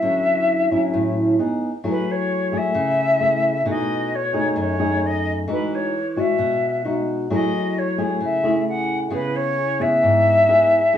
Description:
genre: bossa nova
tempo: 132 BPM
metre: 4/4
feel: straight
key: unclear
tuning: A4 = 439 Hz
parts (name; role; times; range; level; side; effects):
- concert flute; melody; 0.0-11.0 s; B4 to F#5; -20 LUFS; left 1 dB; none
- nylon-string guitar; accompaniment; 0.0-11.0 s; F#2 to G#4; -21 LUFS; equal; none
room: wet small room reverb, RT60 0.6 s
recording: band playing live in one room, small room ambience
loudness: -18 LUFS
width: side -10 dB against mid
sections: 0.0-1.8 A section; 1.8-11.0 B section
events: none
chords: 0.0 Dmaj9; 1.4 B6; 1.8 F#m9; 3.7 B13; 5.5 Emaj9; 7.3 F#m9; 9.1 C#m7

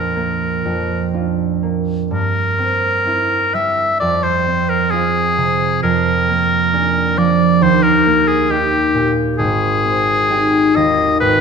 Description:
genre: classical, romantic duo for oboe and harp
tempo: 61-68 BPM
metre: 4/4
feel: rubato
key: unclear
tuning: A4 = 439 Hz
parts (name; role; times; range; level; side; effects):
- clear oboe; melody; 0.0-11.4 s; G4 to E5; -16 LUFS; left 2 dB; none
- concert harp; accompaniment; 0.0-11.4 s; Ab1 to Ab4; -16 LUFS; right 3 dB; none
room: moderate scoring stage reverb, RT60 1.9 s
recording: minimal, uncompressed stereo recording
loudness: -13 LUFS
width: side -6 dB against mid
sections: 0.0-11.4 A section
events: none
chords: 0.0 Bb; 2.1 C7/G; 4.0 Fm; 5.8 Bb7/F; 7.6 Eb; 9.4 Abmaj7

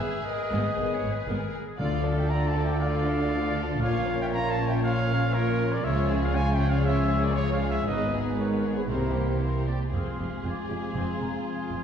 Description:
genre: cinematic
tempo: 118 BPM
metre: 4/4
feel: straight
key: unclear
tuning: A4 = 439 Hz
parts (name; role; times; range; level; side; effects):
- rich symphonic violin section; melody; 0.0-11.8 s; G4 to D5; -38 LUFS; left 3 dB; none
- clear clarinet; second line; 0.0-11.8 s; D#4 to D#5; -39 LUFS; left 2 dB; none
- mellow hollow flute section; second line; 0.0-11.8 s; F4 to D6; -38 LUFS; right 1 dB; none
- warm oboe; second line; 0.0-11.8 s; Bb4 to Ab5; -39 LUFS; equal; none
- warm symphonic violin section; second line; 0.0-11.8 s; B3 to G#4; -40 LUFS; left 2 dB; none
- warm studio viola section; accompaniment; 0.0-11.8 s; G#3 to D4; -38 LUFS; right 2 dB; none
- clear trumpet; stabs; 0.0-9.4 s; Bb4 to Bb5; -32 LUFS; equal; none
- rich symphonic cello section; bass; 0.0-11.8 s; F2 to D3; -31 LUFS; right 1 dB; none
- rich symphonic double bass section; bass; 0.0-11.8 s; F1 to D2; -30 LUFS; right 1 dB; none
- dark French horn section; sustained chords; 0.8-11.8 s; B3 to G#4; -35 LUFS; left 3 dB; none
- dark trombone section; sustained chords; 0.8-11.8 s; D3 to Bb3; -36 LUFS; right 1 dB; none
- timpani; percussion; 1.8-2.5 s; D3; -31 LUFS; left 3 dB; none
room: wet scoring stage reverb, RT60 1.7 s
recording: heard from further back in the room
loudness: -24 LUFS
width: side -8 dB against mid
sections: 0.0-9.9 A section; 9.9-11.8 B section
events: none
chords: 0.0 G#m; 1.8 Dm; 3.8 Bbm; 5.8 C#; 7.9 G#m; 8.9 C7; 9.9 Fm

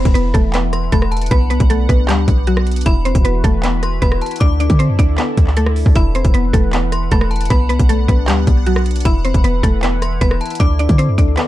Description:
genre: hip hop, trap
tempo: 155 BPM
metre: 4/4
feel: half-time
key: unclear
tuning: A4 = 440 Hz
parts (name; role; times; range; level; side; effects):
- mallet-like synth pluck; melody; 0.0-11.5 s; F#3 to E5; -20 LUFS; left 1 dB; chorus
- metallic FM bell; second line; 0.0-11.5 s; A5 to D6; -28 LUFS; left 2 dB; chorus, tremolo, ping-pong delay
- sweeping resonant pad; sustained chords; 0.0-11.5 s; D3 to F#5; -25 LUFS; equal; chorus
- clean 808-style bass; bass; 0.0-11.4 s; E1 to D3; -16 LUFS; equal; none
- trap drum kit; drums; 0.1-11.5 s; handclaps, hi-hat, kick drum, rim click; -16 LUFS; equal; vintage 12-bit sampler grit
room: digital ambience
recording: dark, warm production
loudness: -12 LUFS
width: side -14 dB against mid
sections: 0.0-11.5 A section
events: none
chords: 0.0 Esus2; 1.3 Bm; 2.9 Esus2; 4.4 Dsus2; 6.0 Esus2; 7.5 Bm; 9.1 Esus2; 10.6 Dsus2

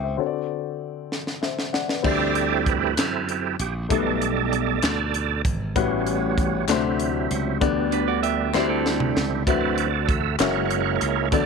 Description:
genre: slow gospel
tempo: 65 BPM (dotted quarters)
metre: 6/8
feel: straight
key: unclear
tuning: A4 = 439 Hz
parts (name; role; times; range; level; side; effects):
- warm grand piano; accompaniment; 0.0-11.5 s; A2 to G5; -26 LUFS; left 12 dB; none
- glassy slap bass; bass; 0.0-11.5 s; F#1 to F#2; -27 LUFS; right 1 dB; none
- crisp fusion drum kit; drums; 1.1-11.5 s; crash cymbal, hi-hat, kick drum, snare drum, toms; -26 LUFS; equal; none
- overdriven tonewheel organ; sustained chords; 2.1-11.5 s; F#3 to F#5; -25 LUFS; right 16 dB; slow rotary speaker, chorus vibrato
- group handclap; percussion; 3.0-10.7 s; none; -32 LUFS; left 15 dB; none
- clean electric guitar; second line; 7.9-9.4 s; C4 to E5; -26 LUFS; right 15 dB; none
room: light reverb, small room ambience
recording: 1960s-style stereo with parts hard left and right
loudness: -21 LUFS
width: side -5 dB against mid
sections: 0.0-2.0 A section; 2.0-11.5 B section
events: drum fill 1.1-2.0, 8.5-9.5; tonewheel organ solo 2.0-11.5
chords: 0.2 D7; 2.0 D9sus4; 3.9 B7alt; 5.8 A13; 6.7 D7; 7.6 G/D; 8.5 D9sus4; 9.5 D13; 10.4 F#7

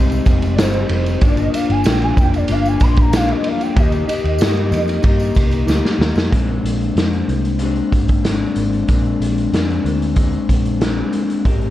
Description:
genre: indie pop, bedroom pop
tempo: 94 BPM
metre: 4/4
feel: straight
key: unclear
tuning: A4 = 439 Hz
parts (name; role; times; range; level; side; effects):
- electric guitar through a small old amp; accompaniment; 0.0-11.7 s; G2 to Bb4; -20 LUFS; left 4 dB; lush chorus, warbly pitch drift
- vintage muted picked electric bass; bass; 0.0-11.7 s; F1 to G2; -20 LUFS; equal; none
- raw garage drum kit; drums; 0.1-11.7 s; hi-hat, kick drum, ride cymbal, snare drum; -17 LUFS; equal; vintage 12-bit sampler grit
- tambourine; percussion; 0.1-6.3 s; none; -41 LUFS; right 6 dB; none
- warbly nostalgic lead; melody; 0.5-5.7 s; C5 to C6; -24 LUFS; right 2 dB; ensemble chorus, tape echo
room: light reverb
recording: dark, warm production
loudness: -14 LUFS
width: side -14 dB against mid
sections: 0.0-6.3 A section; 6.3-11.7 B section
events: drum fill 5.7-6.3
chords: 0.0 Abmaj7; 1.2 Gm7; 3.8 Eb; 6.3 Bb9

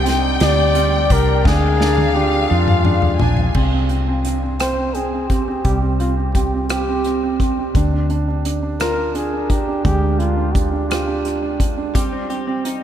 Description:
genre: six-eight pop ballad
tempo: 57 BPM (dotted quarters)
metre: 6/8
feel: straight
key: C minor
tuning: A4 = 440 Hz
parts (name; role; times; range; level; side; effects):
- warm symphonic violin section; second line; 0.0-3.5 s; F5 to Ab5; -24 LUFS; left 2 dB; ping-pong delay
- warm concert grand piano; accompaniment; 0.0-12.8 s; G3 to G5; -22 LUFS; right 5 dB; none
- direct-recorded clean electric guitar; arpeggios; 0.0-3.6, 11.9-12.8 s; G3 to G4; -29 LUFS; left 5 dB; analog chorus
- vintage muted fingered electric bass; bass; 0.0-12.8 s; Bb1 to F2; -20 LUFS; equal; none
- unplugged drum kit; drums; 0.1-12.8 s; crash cymbal, hi-hat, kick drum, rim click, snare drum, toms; -22 LUFS; left 1 dB; none
- breathy flugelhorn; melody; 0.4-11.6 s; F4 to D5; -23 LUFS; left 2 dB; ping-pong delay
room: moderate cathedral reverb, RT60 7.2 s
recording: dreamy mix soaked in reverb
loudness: -15 LUFS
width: side -10 dB against mid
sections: 0.0-3.5 A section; 3.5-12.8 B section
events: drum fill 1.5-3.5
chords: 0.0 Cmadd9; 1.5 Ddim; 3.5 C5; 7.7 Ddim; 11.9 Cm

